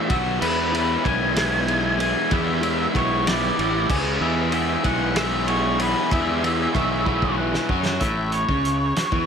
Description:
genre	indie rock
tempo	63 BPM (dotted quarters)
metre	6/8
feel	straight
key	unclear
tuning	A4 = 440 Hz
part	octave-fuzz lead guitar	melody	0.0-9.3 s	B4 to G#5	-25 LUFS	left 1 dB	distortion, plate reverb, tape echo
part	crunchy overdriven guitar	riff	0.0-9.3 s	A2 to C#5	-24 LUFS	equal	none
part	fuzz fingered electric bass	bass	0.1-9.3 s	A1 to F#2	-27 LUFS	right 1 dB	overdrive
part	loose indie drum kit	drums	0.1-9.3 s	crash cymbal, hi-hat, kick drum, ride cymbal, snare drum	-25 LUFS	equal	none
part	glockenspiel with rubber mallets	second line	6.7-8.0 s	B5 to F#6	-34 LUFS	right 4 dB	plate reverb
room	light reverb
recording	none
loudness	-19 LUFS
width	side -7 dB against mid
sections	0.0-8.0 A section; 8.0-9.3 B section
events	drum fill 7.1-8.0; lead electric guitar solo 8.0-9.3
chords	0.1 B5; 0.4 E; 3.6 A5; 3.9 C#5; 4.2 E; 7.7 F#5; 8.0 A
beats	| 0.41 1.36 | 2.31 3.26 | 4.21 5.16 | 6.11 7.06 | 8.02 8.97

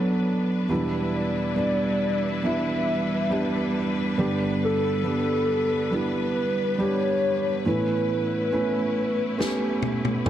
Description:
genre	pop ballad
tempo	69 BPM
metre	4/4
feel	straight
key	unclear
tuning	A4 = 439 Hz
part	hollow clarinet-like synth lead	melody	0.0-10.2 s	A4 to E5	-27 LUFS	left 2 dB	chorus
part	felt-muted upright piano	accompaniment	0.0-10.3 s	E2 to A4	-24 LUFS	right 2 dB	none
part	clear studio string section	sustained chords	0.0-10.3 s	F#3 to B4	-32 LUFS	left 3 dB	none
part	natural country drum kit	drums	9.4-10.3 s	snare drum, toms	-27 LUFS	left 2 dB	none
room	moderate lush hall reverb, RT60 2.0 s, studio ambience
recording	dark, warm production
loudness	-22 LUFS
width	side -11 dB against mid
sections	0.0-10.3 A section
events	drum fill 9.4-10.3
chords	0.0 Bm; 0.7 Em7; 4.2 G; 7.7 Aadd9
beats	| 0.70 1.57 2.44 3.31 | 4.18 5.04 5.92 6.79 | 7.65 8.52 9.39 10.26

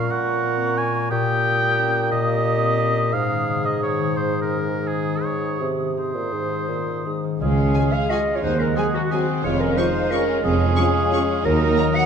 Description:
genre	classical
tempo	156-193 BPM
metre	3/4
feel	rubato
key	Db major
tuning	A4 = 440 Hz
part	clear clarinet	second line	0.0-12.1 s	Gb4 to Gb5	-27 LUFS	right 1 dB	none
part	clear oboe	second line	0.0-12.1 s	Ab4 to Eb6	-26 LUFS	right 1 dB	none
part	mellow silver concert flute	second line	0.0-12.1 s	Gb4 to Eb6	-29 LUFS	right 1 dB	none
part	mellow bassoon	accompaniment	0.0-12.1 s	Ab2 to Ab3	-26 LUFS	right 2 dB	none
part	concert harp	arpeggios	0.0-12.1 s	Ab2 to F5	-27 LUFS	left 7 dB	none
part	rich studio violin section	second line	7.4-12.1 s	Bb3 to Bb4	-28 LUFS	left 3 dB	none
part	clear studio cello section	bass	7.4-11.7 s	Db2 to F2	-25 LUFS	right 3 dB	none
part	warm studio double bass section	bass	7.4-11.7 s	F1 to Eb2	-25 LUFS	right 4 dB	none
part	warm studio violin section	melody	7.7-11.8 s	Ab5 to Db6	-33 LUFS	right 1 dB	none
part	dark studio viola section	accompaniment	7.7-11.9 s	F3 to Ab4	-33 LUFS	equal	none
part	mellow French horn section	sustained chords	7.8-11.9 s	Ab3 to Gb4	-30 LUFS	left 3 dB	none
room	wet recital hall reverb, RT60 1.6 s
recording	dark, warm production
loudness	-19 LUFS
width	side -7 dB against mid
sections	0.0-7.4 A section; 7.4-12.1 B section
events	none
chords	0.0 Gb/Bb; 1.1 Eb7/Bb; 3.1 Ab; 7.4 Db; 8.4 Ab7/Eb; 9.4 Db/F; 11.4 Ebm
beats	| 0.11 0.43 0.78 | 1.11 1.44 1.79 | 2.12 2.45 2.81 | 3.13 3.47 3.83 | 4.16 4.50 4.87 | 5.23 5.60 5.97 | 6.33 6.68 7.06 | 7.41 7.75 8.10 | 8.43 8.77 9.12 | 9.45 9.77 10.12 | 10.44 10.77 11.12 | 11.44 11.77

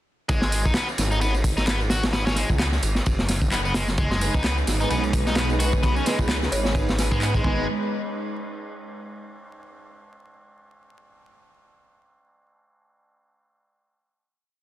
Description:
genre	breakbeat, breaks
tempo	130 BPM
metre	4/4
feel	swing 57% on 16ths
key	G# minor pentatonic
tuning	A4 = 440 Hz
part	distorted electric guitar	riff	0.3-7.7 s	G#3 to F#4	-28 LUFS	left 1 dB	overdrive, tube saturation, ping-pong delay
part	phased detuned saw bass	bass	0.3-7.7 s	F#1 to G#2	-25 LUFS	equal	phaser
part	crunchy breakbeat drum kit	drums	0.3-7.5 s	kick drum, ride cymbal, snare drum	-25 LUFS	equal	none
part	house drum kit	drums	0.3-7.4 s	handclaps, hi-hat, tambourine	-31 LUFS	right 1 dB	overdrive
part	lush unison pad	sustained chords	4.0-7.7 s	G#3 to B4	-31 LUFS	right 2 dB	chorus, sidechain pumping
part	dark studio string section	stabs	4.2-7.6 s	B3 to B4	-31 LUFS	right 2 dB	ping-pong delay
part	folk marimba with medium mallets	melody	6.5-6.7 s	C#5	-33 LUFS	right 1 dB	telephone sound, ping-pong delay
room	small room ambience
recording	dense, heavily limited modern master, vinyl crackle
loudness	-20 LUFS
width	side -14 dB against mid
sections	0.3-7.7 drop; 7.7-9.5 final hit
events	drop 0.3-7.7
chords	0.3 G#m; 7.7 N.C.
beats	| 0.29 0.75 1.21 1.67 | 2.13 2.60 3.06 3.52 | 3.98 4.44 4.90 5.37 | 5.83 6.29 6.75 7.21

